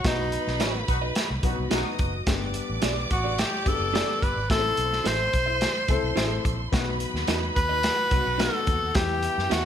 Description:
uptempo 1960s-style soul; 108 BPM; 4/4; straight; A4 = 439 Hz
breathy tenor saxophone; melody; 0.0-9.7 s; D#4 to C5; -26 LUFS; left 1 dB; plate reverb
bright studio violin section; second line; 0.0-9.7 s; E4 to D#6; -33 LUFS; right 1 dB
vintage muted fingered electric bass; bass; 0.0-9.7 s; F#1 to F#2; -30 LUFS; equal
crunchy breakbeat drum kit; drums; 0.0-9.6 s; hi-hat, kick drum, snare drum; -27 LUFS; equal
warm upright piano; accompaniment; 0.1-9.7 s; F#3 to A4; -32 LUFS; left 6 dB
clean electric guitar; stabs; 0.6-9.6 s; D4 to E5; -33 LUFS; right 4 dB; spring reverb
warm horn section; second line; 0.9-2.1 s; D#4 to B4; -34 LUFS; left 2 dB
moderate small room reverb, RT60 0.5 s; -22 LUFS; side -9 dB against mid
0.0-9.7 A section
band accent 0.0-2.3
0.0 B; 2.3 G; 4.5 Am; 6.7 B; 9.0 Em

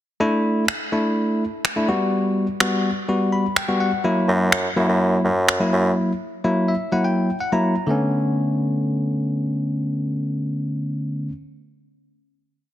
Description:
dance-pop; 125 BPM; 4/4; straight; B minor; A4 = 439 Hz
barky tine electric piano; accompaniment; 0.2-11.3 s; D3 to B5; -20 LUFS; left 1 dB
electronic finger snaps; drums; 0.7-5.6 s; -23 LUFS; right 1 dB; soft clipping on snare
clear bassoon; bass; 4.3-5.9 s; F#2; -20 LUFS; right 1 dB
light reverb, studio reverb; dense, heavily limited modern master; -19 LUFS; side -12 dB against mid
0.2-7.9 verse; 7.9-11.7 final chord
tine electric piano fill 3.1-4.0, 6.4-7.9
0.2 Dsus2; 1.9 Gmaj7; 4.0 F#7; 7.9 Bm9

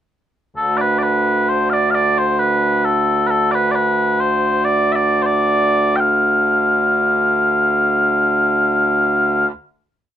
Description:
celtic folk; 133 BPM; 3/4; swing 54% on 8ths; D dorian; A4 = 440 Hz
mellow small bagpipes; solo; 0.6-9.5 s; D2 to G5; -14 LUFS; equal
light reverb; minimal, uncompressed stereo recording; -14 LUFS; side -10 dB against mid
0.6-6.0 A section; 6.0-8.7 final note

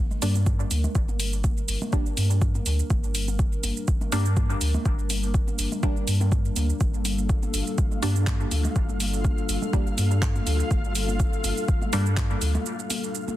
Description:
dub techno; 123 BPM; 4/4; swing 55% on 16ths; G minor; A4 = 440 Hz
dark analog pad; sustained chords; 0.0-13.4 s; G3 to Bb4; -33 LUFS; left 2 dB; chorus, sidechain pumping
soft dub sub bass; bass; 0.0-12.6 s; G1 to G2; -25 LUFS; equal; sidechain pumping
deep house drum kit; drums; 0.1-13.4 s; handclaps, hi-hat, shaker; -31 LUFS; right 2 dB; overdrive
electronic congas and toms; percussion; 0.1-13.4 s; -36 LUFS; right 1 dB; sidechain pumping on toms, sidechain pumping on perc, dub echo
filtered dub chord stab; stabs; 0.2-12.0 s; G3 to D4; -33 LUFS; right 1 dB; chorus, phaser, sidechain pumping, dub echo
electronic kick drum; drums; 0.5-12.3 s; -24 LUFS; equal; overdrive
flickering grainy texture; texture; 7.2-13.4 s; F4 to F5; -36 LUFS; equal; built-in reverb, sidechain pumping
little or no reverb; dense, heavily limited modern master; -22 LUFS; side -14 dB against mid
0.0-13.4 A section
break 12.7-13.4
0.0 Gm

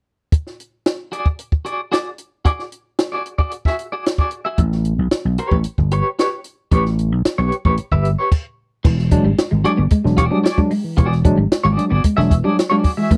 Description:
funk; 113 BPM; 4/4; straight; E mixolydian; A4 = 439 Hz
compact cocktail drum kit; drums; 0.3-13.2 s; crash cymbal, hi-hat, kick drum, snare drum; -20 LUFS; equal
clean electric guitar; accompaniment; 1.1-13.1 s; F#4 to E5; -24 LUFS; equal; tremolo
vintage slap bass; bass; 4.6-13.2 s; E1 to B1; -20 LUFS; equal
clean electric guitar; riff; 8.8-13.2 s; E3 to B3; -25 LUFS; equal; ensemble chorus
tine electric piano; stabs; 8.8-13.2 s; A2 to D4; -22 LUFS; equal
light reverb; dry, close 1970s-style studio recording; -18 LUFS; mono
0.3-8.8 A section; 8.8-13.2 B section
stop 8.3-8.8
0.3 E9 (rootless); 4.6 A9; 8.8 E9

